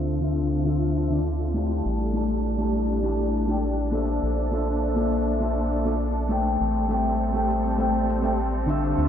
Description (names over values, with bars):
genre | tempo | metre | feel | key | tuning
sunset chillout | 101 BPM | 4/4 | straight | unclear | A4 = 441 Hz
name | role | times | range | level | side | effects
electric guitar at the edge of break-up | accompaniment | 0.0-9.1 s | D3 to A5 | -25 LUFS | left 1 dB | auto-pan, digital delay, shimmer reverb, slapback echo
warm studio string section | sustained chords | 0.0-9.1 s | D3 to E5 | -29 LUFS | equal | shimmer reverb
round analog bass | bass | 0.0-9.1 s | A1 to D2 | -27 LUFS | equal | none
shaker | drums | 0.1-9.1 s | none | -66 LUFS | right 3 dB | none
room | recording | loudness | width
wet lush hall reverb, RT60 2.0 s | big arena sound, low-pass filter | -22 LUFS | side -9 dB against mid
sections
0.0-9.1 A section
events
filter sweep 0.0-9.1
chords
0.0 Dm7; 1.9 A7sus4; 4.2 Bbmaj9#11; 6.6 Am7